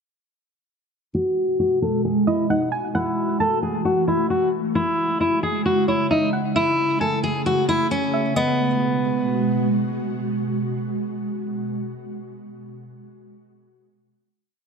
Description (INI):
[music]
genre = hip hop, trap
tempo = 133 BPM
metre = 4/4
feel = half-time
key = G# phrygian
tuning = A4 = 443 Hz
[part]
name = fingerpicked steel-string acoustic guitar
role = melody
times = 1.1-9.7 s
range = B3 to A4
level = -21 LUFS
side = left 1 dB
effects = low-pass filter, ping-pong delay
[part]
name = ethereal airy pad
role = sustained chords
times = 1.8-11.6 s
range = B2 to G#4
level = -24 LUFS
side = right 1 dB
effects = ensemble chorus, built-in reverb, low-pass filter
[part]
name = soft round pluck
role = second line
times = 2.3-9.7 s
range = C#5 to A5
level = -28 LUFS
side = right 4 dB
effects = chorus, ping-pong delay
[sound]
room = light reverb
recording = dark, warm production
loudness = -19 LUFS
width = side -6 dB against mid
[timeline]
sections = 1.1-8.4 breakdown; 8.4-12.0 final chord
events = filter sweep 1.1-8.4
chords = 1.1 G#m7; 2.9 F#m7; 4.8 C#m; 6.6 Amaj7; 8.4 G#m7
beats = | 1.15 1.60 2.05 2.50 | 2.95 3.40 3.85 4.30 | 4.75 5.21 5.66 6.11 | 6.56 7.01 7.46 7.91 | 8.36 8.81 9.27 9.72 | 10.17 10.62 11.07 11.52